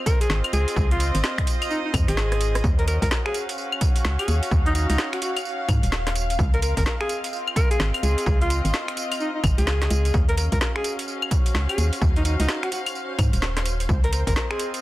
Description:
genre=UK garage, two-step garage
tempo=128 BPM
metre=4/4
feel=swing 62% on 16ths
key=Eb dorian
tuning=A4 = 440 Hz
part: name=ethereal airy pad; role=sustained chords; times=0.0-14.8 s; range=C5 to F5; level=-36 LUFS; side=left 1 dB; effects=ensemble chorus, built-in reverb, sidechain pumping
part: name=warm chamber string section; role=texture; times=0.0-14.8 s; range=C4 to F5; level=-32 LUFS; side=equal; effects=sidechain pumping
part: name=breathy alto saxophone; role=melody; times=0.1-14.7 s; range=Eb4 to Bb4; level=-28 LUFS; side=equal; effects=digital delay
part: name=electronic kick drum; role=drums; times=0.1-14.3 s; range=none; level=-22 LUFS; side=equal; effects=none
part: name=garage drum kit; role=drums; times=0.1-14.8 s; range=claves, finger snaps, hi-hat, rim click, snare drum, tambourine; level=-28 LUFS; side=equal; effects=overdrive
part: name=organ-like FM bass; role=bass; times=0.3-14.3 s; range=Eb1 to Ab2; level=-22 LUFS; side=equal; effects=none
room=digital ambience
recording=dense, heavily limited modern master, vinyl crackle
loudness=-20 LUFS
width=side -16 dB against mid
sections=0.0-14.8 A section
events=drum fill 2.2-2.6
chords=0.0 Dbmaj9; 2.6 Ebm9; 6.4 Dbmaj9; 10.1 Ebm9; 13.9 Dbmaj9

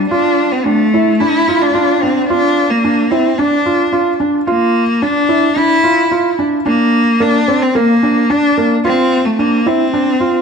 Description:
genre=electronica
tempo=110 BPM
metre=4/4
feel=straight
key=D minor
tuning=A4 = 438 Hz
part: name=rich cello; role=melody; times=0.0-10.4 s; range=G3 to E4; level=-13 LUFS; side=left 2 dB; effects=none
part: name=felt-muted upright piano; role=riff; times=0.1-10.4 s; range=Bb3 to F4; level=-14 LUFS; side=right 2 dB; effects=ping-pong delay
room=wet echo chamber reverb, RT60 1.7 s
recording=nothing above 10.3 kHz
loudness=-11 LUFS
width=side -6 dB against mid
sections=0.0-2.3 A section; 2.3-10.4 B section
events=build-up 0.0-2.3; drop 2.3-10.4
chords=0.1 Dm; 6.7 Bb; 8.8 Dm

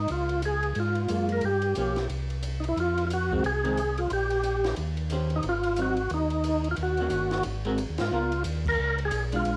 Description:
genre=soul jazz organ trio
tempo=180 BPM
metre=4/4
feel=swing 62% on 8ths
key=Ab mixolydian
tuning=A4 = 440 Hz
part: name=percussive tonewheel organ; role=melody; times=0.0-9.6 s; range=Eb4 to Bb4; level=-30 LUFS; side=equal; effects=slow rotary speaker, overdrive, chorus vibrato, cassette tape, plate reverb
part: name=mellow tonewheel organ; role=bass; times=0.0-9.6 s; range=G1 to Ab2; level=-32 LUFS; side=equal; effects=slow rotary speaker
part: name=compact cocktail drum kit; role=drums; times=0.1-9.5 s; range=crash cymbal, hi-hat, kick drum, ride cymbal, snare drum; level=-40 LUFS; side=equal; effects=cassette tape
part: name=vintage hollow-body jazz guitar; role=accompaniment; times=1.1-9.6 s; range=Eb3 to C5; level=-34 LUFS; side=equal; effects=cassette tape, plate reverb
room=moderate studio reverb, RT60 0.6 s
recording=home recording on cassette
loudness=-28 LUFS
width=mono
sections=0.0-8.1 A section; 8.1-9.6 B section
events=band accent 8.0, 8.6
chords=0.1 Db6; 1.4 Gm7b5; 2.1 C; 2.8 Fm7; 4.1 Gm/Bb; 4.8 Eb6; 5.4 Ab7; 6.8 Ebm7; 7.5 Ab9; 8.1 Db13

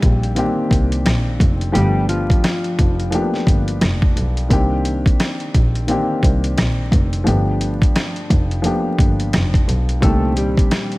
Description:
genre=hip hop, boom-bap hip-hop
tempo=87 BPM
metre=4/4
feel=swing 60% on 16ths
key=C dorian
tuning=A4 = 440 Hz
part: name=mellow electric guitar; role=melody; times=0.0-3.3, 10.0-11.0 s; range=F3 to A4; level=-23 LUFS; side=equal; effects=high-pass filter, low-pass filter, ping-pong delay
part: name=dark baby grand piano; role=accompaniment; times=0.0-11.0 s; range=Bb2 to G4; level=-21 LUFS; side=left 1 dB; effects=cassette tape, high-pass filter, low-pass filter
part: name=warm double bass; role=bass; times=0.0-10.6 s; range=F1 to C2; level=-19 LUFS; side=equal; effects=none
part: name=boom bap sampler-style drum kit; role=drums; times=0.0-11.0 s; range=hi-hat, kick drum, rim click, snare drum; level=-17 LUFS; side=equal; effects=vintage 12-bit sampler grit
room=little or no reverb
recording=vinyl crackle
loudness=-15 LUFS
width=side -20 dB against mid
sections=0.0-11.0 A section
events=none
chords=0.0 Cm9; 1.7 G7; 4.5 Cm9; 7.3 G7; 10.0 Cm9

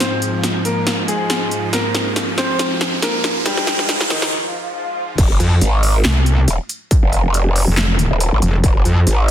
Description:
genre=heavy wobble dubstep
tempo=139 BPM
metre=4/4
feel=swing 55% on 16ths, half-time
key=F minor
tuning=A4 = 441 Hz
part: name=bright grand piano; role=melody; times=0.0-4.3 s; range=Eb3 to C5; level=-22 LUFS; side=left 1 dB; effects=tape echo
part: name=supersaw pad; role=sustained chords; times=0.0-5.1 s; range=Ab2 to F3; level=-25 LUFS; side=equal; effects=sidechain pumping, low-pass filter
part: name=big-room dance drum kit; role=drums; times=0.0-9.3 s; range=crash cymbal, handclaps, hi-hat, snare drum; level=-20 LUFS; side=equal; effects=high-pass filter on hats, soft clipping on snare, high-pass filter on snare, high-pass filter on cymbals, high-pass filter on room
part: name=riser and swell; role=sound effects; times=0.2-5.2 s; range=none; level=-26 LUFS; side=right 2 dB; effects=none
part: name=growl bass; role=bass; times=5.2-9.3 s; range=Eb1 to Ab1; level=-15 LUFS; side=equal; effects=chorus, overdrive
part: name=electronic kick drum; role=drums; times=5.2-8.7 s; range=none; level=-15 LUFS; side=equal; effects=distortion
part: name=metallic wobble bass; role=bass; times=5.4-9.1 s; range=F1 to F2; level=-14 LUFS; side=equal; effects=distortion, chorus, overdrive
room=light reverb, digital ambience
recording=dense, heavily limited modern master, high-pass filter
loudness=-14 LUFS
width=side -10 dB against mid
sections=0.0-5.2 A section; 5.2-9.3 B section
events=build-up 0.0-5.2; drum fill 0.0-4.3; filter sweep 0.0-5.2; riser 0.2-4.3; break 4.3-5.2; swell 4.3-5.2; drop 5.2-9.3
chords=0.0 Fmadd9; 5.2 Fm

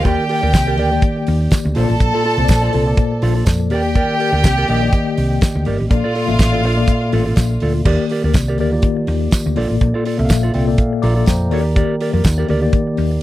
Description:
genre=disco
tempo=123 BPM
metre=4/4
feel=straight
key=unclear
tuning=A4 = 440 Hz
part: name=clear studio violin section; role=second line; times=0.0-7.6 s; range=F4 to A5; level=-21 LUFS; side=right 1 dB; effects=none
part: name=mellow electric guitar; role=accompaniment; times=0.0-13.1 s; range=F4 to D5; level=-23 LUFS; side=right 4 dB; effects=none
part: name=mellow tine electric piano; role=accompaniment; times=0.0-13.2 s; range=Bb2 to D6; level=-19 LUFS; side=left 3 dB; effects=medium stereo tremolo
part: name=hollow-body short-scale fingered electric bass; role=bass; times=0.0-13.2 s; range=G1 to F2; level=-18 LUFS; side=equal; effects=none
part: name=damped 70s drum kit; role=drums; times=0.1-13.1 s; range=crash cymbal, hi-hat, kick drum, snare drum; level=-15 LUFS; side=equal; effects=none
part: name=tambourine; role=percussion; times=0.5-12.4 s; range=none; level=-32 LUFS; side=right 6 dB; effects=none
room=little or no reverb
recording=dry, close 1970s-style studio recording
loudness=-14 LUFS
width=side -15 dB against mid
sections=0.0-7.9 A section; 7.9-13.2 A section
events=tine electric piano fill 10.3-11.8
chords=0.0 Ebmaj7; 1.8 Bbmaj7; 3.7 Ebmaj7; 5.9 Bbmaj7; 7.9 Ebmaj7; 9.6 Bbmaj7; 11.5 Ebmaj7

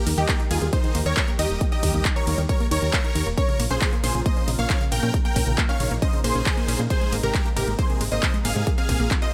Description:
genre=uplifting trance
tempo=136 BPM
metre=4/4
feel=straight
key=Eb mixolydian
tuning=A4 = 440 Hz
part: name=big supersaw lead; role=melody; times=0.0-9.3 s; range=Eb4 to G5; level=-32 LUFS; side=equal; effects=phaser, sidechain pumping, dub echo
part: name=analog pluck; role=second line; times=0.0-9.3 s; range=G4 to G5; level=-34 LUFS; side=equal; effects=ensemble chorus, sidechain pumping, dub echo
part: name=lush unison pad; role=sustained chords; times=0.0-9.3 s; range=C3 to Bb4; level=-36 LUFS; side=equal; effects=chorus, sidechain pumping
part: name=unison pluck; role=arpeggios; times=0.0-9.3 s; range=C3 to Eb4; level=-34 LUFS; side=equal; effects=sidechain pumping, dub echo
part: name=solid FM bass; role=bass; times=0.1-9.1 s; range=Eb1 to Bb2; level=-28 LUFS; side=equal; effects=sidechain pumping
part: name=big-room dance drum kit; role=drums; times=0.1-9.3 s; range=handclaps, hi-hat, ride cymbal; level=-31 LUFS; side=equal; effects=overdrive
part: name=electronic kick drum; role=drums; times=0.3-9.2 s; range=none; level=-25 LUFS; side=equal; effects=overdrive
room=little or no reverb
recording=none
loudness=-22 LUFS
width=mono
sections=0.0-9.3 A section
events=none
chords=0.0 Eb; 3.4 Bbm; 6.9 Abadd9; 8.7 Bbsus2

